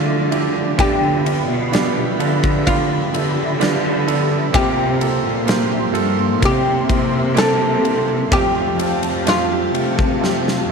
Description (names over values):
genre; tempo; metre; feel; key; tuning
pop ballad; 64 BPM; 4/4; straight; F major; A4 = 440 Hz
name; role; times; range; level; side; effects
oud; melody; 0.0-10.7 s; D4 to A4; -21 LUFS; left 1 dB; slapback echo
clear grand piano; accompaniment; 0.0-10.7 s; C3 to C5; -21 LUFS; right 12 dB; none
airy breathy pad; sustained chords; 0.0-10.7 s; F3 to D6; -27 LUFS; left 3 dB; chorus, phaser
picked steel-string acoustic guitar; arpeggios; 0.0-10.7 s; C3 to A4; -26 LUFS; left 12 dB; none
rich studio cello section; bass; 0.0-10.7 s; F2 to D3; -22 LUFS; left 1 dB; none
huge arena drum kit; drums; 0.3-10.7 s; kick drum, ride cymbal, snare drum; -22 LUFS; left 1 dB; none
room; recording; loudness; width
light reverb, small room reverb; 1960s-style stereo with parts hard left and right; -15 LUFS; side -5 dB against mid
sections
0.0-10.7 A section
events
drum fill 10.2-10.7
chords
0.0 Dmadd9; 0.8 G7; 4.5 C7sus4; 6.4 C7; 8.3 Fadd9